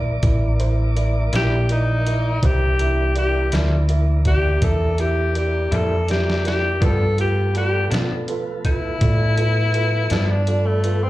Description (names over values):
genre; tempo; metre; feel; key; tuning
slow blues; 55 BPM (dotted quarters); 12/8; straight; C mixolydian; A4 = 440 Hz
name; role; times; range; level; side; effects
dark concert grand piano; accompaniment; 0.0-11.1 s; E4 to E5; -28 LUFS; right 5 dB; slapback echo
tonewheel organ; sustained chords; 0.0-11.1 s; E3 to D5; -31 LUFS; equal; slow rotary speaker
hollow-body short-scale fingered electric bass; bass; 0.0-11.1 s; A1 to B2; -20 LUFS; equal; none
trip hop sampler-style drum kit; drums; 0.2-11.0 s; hi-hat, kick drum, snare drum, toms; -23 LUFS; equal; none
electric guitar through a small old amp; accompaniment; 1.3-10.3 s; G2 to E4; -29 LUFS; left 2 dB; harmonic tremolo, slapback echo
warm tenor saxophone; melody; 1.4-11.1 s; A3 to A4; -22 LUFS; left 2 dB; slapback echo
room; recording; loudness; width
little or no reverb; live gig heard through the venue's PA, club reverb; -17 LUFS; side -16 dB against mid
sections
0.0-11.1 A section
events
tenor saxophone solo 0.0-11.1; drum fill 5.7-6.8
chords
0.0 C7; 6.8 G7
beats
0.23 1.33 | 2.43 3.53 4.63 5.73 | 6.83 7.92 9.02 10.12